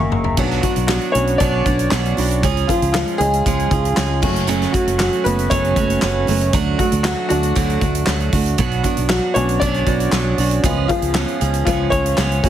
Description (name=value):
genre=piano-driven pop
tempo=117 BPM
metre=4/4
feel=straight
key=unclear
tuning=A4 = 435 Hz
part: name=clear upright piano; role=accompaniment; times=0.0-12.5 s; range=E#3 to C#6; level=-20 LUFS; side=left 2 dB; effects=none
part: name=fingered electric bass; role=bass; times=0.0-12.5 s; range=F#1 to D2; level=-21 LUFS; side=equal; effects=none
part: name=natural country drum kit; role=drums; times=0.1-12.5 s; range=crash cymbal, handclaps, hi-hat, kick drum, snare drum, toms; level=-22 LUFS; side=equal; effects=none
part: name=picked steel-string acoustic guitar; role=riff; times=0.4-12.5 s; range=F#2 to G#4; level=-22 LUFS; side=right 9 dB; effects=none
part: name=group handclap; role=percussion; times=0.9-12.3 s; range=none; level=-33 LUFS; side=left 4 dB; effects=none
room=light reverb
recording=heavily compressed radio sound, multiband compression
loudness=-15 LUFS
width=side -10 dB against mid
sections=0.4-12.5 A section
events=drum fill 0.0-0.4; upright piano solo 0.4-12.5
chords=0.4 Bm; 2.4 C#; 4.2 F#m; 6.5 D; 8.6 Bm; 10.6 C#7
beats=| 0.38 0.89 1.41 1.92 | 2.43 2.94 3.46 3.97 | 4.49 5.00 5.51 6.02 | 6.54 7.05 7.56 8.08 | 8.59 9.10 9.62 10.13 | 10.64 11.15 11.67 12.18